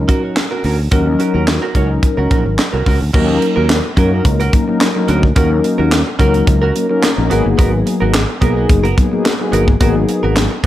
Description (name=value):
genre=early-eighties boogie funk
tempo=108 BPM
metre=4/4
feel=straight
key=unclear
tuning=A4 = 440 Hz
part: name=mellow synth brass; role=accompaniment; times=0.0-10.7 s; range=E3 to A#4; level=-16 LUFS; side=left 2 dB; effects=chorus
part: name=fretless electric bass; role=bass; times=0.0-10.7 s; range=F#1 to F#2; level=-16 LUFS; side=equal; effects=none
part: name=direct-recorded clean electric guitar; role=riff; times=0.1-10.7 s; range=B3 to C#5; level=-21 LUFS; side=right 4 dB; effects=lush chorus
part: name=tight funk drum kit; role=drums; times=0.1-10.7 s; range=crash cymbal, handclaps, hi-hat, kick drum, snare drum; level=-16 LUFS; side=equal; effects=gated reverb
room=light reverb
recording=none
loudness=-12 LUFS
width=side -13 dB against mid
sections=0.0-3.1 A section; 3.1-10.7 B section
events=none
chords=0.0 D#m7; 7.3 G#m9